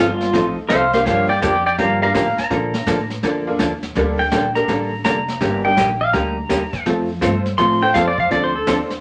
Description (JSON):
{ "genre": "country, western swing", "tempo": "166 BPM", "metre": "4/4", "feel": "swing 65% on 8ths", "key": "unclear", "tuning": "A4 = 438 Hz", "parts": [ { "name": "pedal steel guitar", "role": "second line", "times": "0.0-8.7 s", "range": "F4 to C6", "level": "-21 LUFS", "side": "equal", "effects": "none" }, { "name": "vintage hollow-body jazz guitar", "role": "accompaniment", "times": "0.0-8.8 s", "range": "D3 to A4", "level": "-23 LUFS", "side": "equal", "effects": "none" }, { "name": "upright bass", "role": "bass", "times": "0.0-9.0 s", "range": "F1 to Bb2", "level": "-28 LUFS", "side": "equal", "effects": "none" }, { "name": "vintage brush drum kit", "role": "drums", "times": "0.2-9.0 s", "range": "brushed snare drum, hi-hat, kick drum, snare drum", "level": "-28 LUFS", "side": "equal", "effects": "none" }, { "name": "honky-tonk upright piano", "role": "accompaniment", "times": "0.3-8.9 s", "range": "A3 to C5", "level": "-26 LUFS", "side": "equal", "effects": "none" } ], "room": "wet studio ambience, RT60 0.4 s", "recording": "none", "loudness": "-18 LUFS", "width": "mono", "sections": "0.0-9.0 A section", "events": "pedal steel guitar solo 0.0-9.0", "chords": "0.0 F7; 1.1 Gm7; 2.5 Bbmaj7; 4.0 Gmadd9; 5.4 Ebmaj7/G; 6.9 F; 8.3 Dm7" }